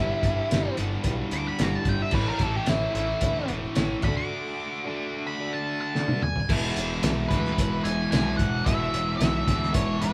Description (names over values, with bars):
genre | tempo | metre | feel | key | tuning
classic rock | 110 BPM | 4/4 | straight | unclear | A4 = 438 Hz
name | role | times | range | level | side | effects
octave-fuzz lead guitar | melody | 0.0-10.1 s | E4 to D6 | -32 LUFS | equal | distortion
reed electric piano | accompaniment | 0.0-10.1 s | E4 to E5 | -39 LUFS | equal | fast tremolo
distorted electric guitar | riff | 0.0-10.1 s | G2 to F#4 | -34 LUFS | equal | distortion
tight distorted guitar | riff | 0.0-10.1 s | E2 to D4 | -36 LUFS | equal | distortion
fuzz picked electric bass | bass | 0.0-10.1 s | E1 to D2 | -34 LUFS | equal | overdrive
cloth-damped thuddy drum kit | drums | 0.2-10.1 s | crash cymbal, hi-hat, kick drum, snare drum, tambourine, toms | -29 LUFS | equal | none
cowbell | percussion | 0.5-9.9 s | none | -48 LUFS | equal | none
room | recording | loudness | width
moderate large studio reverb, RT60 0.9 s | band playing live in one room | -26 LUFS | mono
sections
0.0-6.5 A section; 6.5-10.1 B section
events
lead electric guitar solo 0.0-6.5; break 4.3-6.5; drum fill 6.0-6.5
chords
0.0 G6; 2.1 A; 4.0 D; 6.5 E